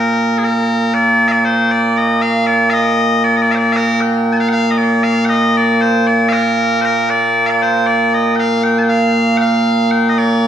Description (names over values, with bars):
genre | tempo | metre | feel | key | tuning
scottish traditional, Scottish pipe music | 78 BPM (dotted quarters) | 6/8 | straight | Bb major | A4 = 436 Hz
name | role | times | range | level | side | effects
loud bright bagpipes | solo | 0.0-10.5 s | Bb2 to A5 | -11 LUFS | equal | none
room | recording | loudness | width
wet recital hall reverb, RT60 1.5 s | heard from further back in the room | -11 LUFS | side -9 dB against mid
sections
0.9-10.5 A section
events
none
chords
none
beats
0.17 | 0.94 1.71 | 2.48 3.25 | 4.02 4.79 | 5.56 6.33 | 7.09 7.87 | 8.63 9.40 | 10.17